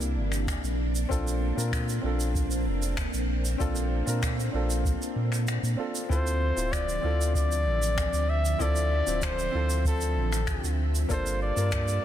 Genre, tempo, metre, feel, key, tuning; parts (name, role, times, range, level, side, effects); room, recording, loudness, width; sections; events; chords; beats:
sunset chillout; 96 BPM; 4/4; straight; A4 = 442 Hz
dark grand piano; accompaniment; 0.0-12.0 s; Bb3 to C5; -35 LUFS; left 1 dB; auto-pan, ping-pong delay
soft string machine; sustained chords; 0.0-12.0 s; C3 to A5; -34 LUFS; equal; ensemble chorus
warm sub bass; bass; 0.0-12.0 s; D1 to Bb2; -28 LUFS; equal; tube saturation
shaker and finger snaps; drums; 0.0-12.0 s; -36 LUFS; right 1 dB; soft clipping on snare
electronic kick drum; drums; 0.5-11.8 s; -30 LUFS; equal
warm flugelhorn; melody; 6.1-12.0 s; A4 to E5; -30 LUFS; left 2 dB; ping-pong delay
light reverb, studio reverb; dense, heavily limited modern master; -25 LUFS; side -11 dB against mid
0.0-12.0 A section
kick drops out 5.5-6.1
0.0 C9; 0.8 Bbmaj9; 6.1 Dm9; 11.1 Gm9
0.47 | 1.10 1.72 2.35 2.97 | 3.60 4.22 4.85 5.47 | 6.10 6.72 7.35 7.97 | 8.60 9.22 9.85 10.47 | 11.10 11.72